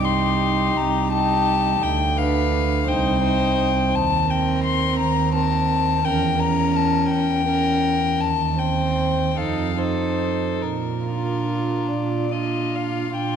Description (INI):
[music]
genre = classical, slow romantic movement for string quartet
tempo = 46-58 BPM (dotted quarters)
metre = 6/8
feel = rubato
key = Bb major from 3.9 s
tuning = A4 = 442 Hz
[part]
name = rich violin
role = melody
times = 0.0-13.4 s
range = Bb4 to C6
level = -23 LUFS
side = left 8 dB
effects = none
[part]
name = rich violin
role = second line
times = 0.0-13.4 s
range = F4 to C5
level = -28 LUFS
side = left 1 dB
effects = none
[part]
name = warm viola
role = accompaniment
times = 0.0-13.4 s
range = C4 to Eb4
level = -26 LUFS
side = right 2 dB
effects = none
[part]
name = warm cello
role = bass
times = 0.0-13.4 s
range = C2 to Bb2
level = -23 LUFS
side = right 4 dB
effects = none
[sound]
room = moderate concert hall reverb, RT60 2.5 s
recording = dark, warm production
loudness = -19 LUFS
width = side -7 dB against mid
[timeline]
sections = 0.0-13.1 A section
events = none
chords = 0.0 Cm; 1.8 Bdim/D; 2.9 Cm; 3.9 Cm7/Eb; 6.1 Edim7; 8.2 Cm/Eb; 9.4 F7; 10.6 Bb